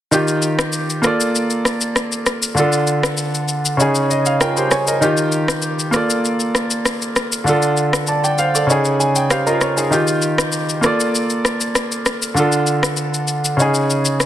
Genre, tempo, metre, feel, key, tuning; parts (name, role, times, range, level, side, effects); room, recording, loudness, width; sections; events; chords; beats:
afrobeats; 98 BPM; 4/4; straight; Bb major; A4 = 440 Hz
clear grand piano; accompaniment; 0.1-14.3 s; Db3 to A5; -16 LUFS; right 1 dB
electronic shaker and rim click; drums; 0.1-14.3 s; -20 LUFS; left 1 dB; soft clipping on snare
light reverb, studio reverb; dense, heavily limited modern master; -15 LUFS; side -12 dB against mid
0.1-14.3 A section
grand piano fill 3.8-5.0, 8.7-9.9
0.1 Ebadd9; 1.0 Bbmaj7; 2.6 Dm; 3.8 Dbsus2; 5.0 Ebadd9; 5.9 Bbmaj7; 7.5 Dm; 8.7 Dbsus2; 9.9 Ebadd9; 10.8 Bbmaj7; 12.4 Dm; 13.6 Dbsus2
| 0.12 0.73 1.35 1.96 | 2.57 3.18 3.80 4.41 | 5.02 5.63 6.25 6.86 | 7.47 8.08 8.69 9.31 | 9.92 10.53 11.14 11.76 | 12.37 12.98 13.59 14.20